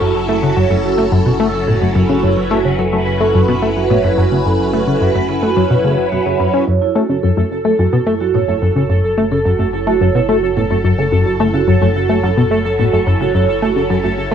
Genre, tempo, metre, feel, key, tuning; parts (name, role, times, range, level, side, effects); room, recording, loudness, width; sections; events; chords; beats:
ambient, sequencer-driven space music; 108 BPM; 4/4; straight; F# minor; A4 = 441 Hz
phased string machine; sustained chords; 0.0-14.3 s; F#3 to B4; -20 LUFS; left 1 dB; ensemble chorus, phaser, cassette tape
vibraphone with soft mallets; arpeggios; 0.0-14.3 s; E4 to E5; -18 LUFS; moving between right 3 dB and right 10 dB; auto-pan, low-pass filter, cassette tape, analog delay
tight sequenced synth; riff; 0.0-14.3 s; F#2 to C#4; -15 LUFS; left 1 dB; chorus, cassette tape, analog delay
fat analog bass; bass; 0.0-14.3 s; F#1; -24 LUFS; left 1 dB
pulsing gated texture; texture; 6.8-14.3 s; A4; -23 LUFS; left 2 dB; chorus, built-in reverb, cassette tape
wet small room reverb, RT60 0.5 s; home recording on cassette; -12 LUFS; side -8 dB against mid
0.0-6.7 A section; 6.7-14.3 B section
fade-in on string machine 6.7-14.3
0.0 F#m7
| 0.01 0.57 1.12 1.68 | 2.23 2.79 3.34 3.90 | 4.46 5.01 5.57 6.12 | 6.68 7.23 7.79 8.34 | 8.90 9.46 10.01 10.57 | 11.12 11.68 12.23 12.79 | 13.34 13.90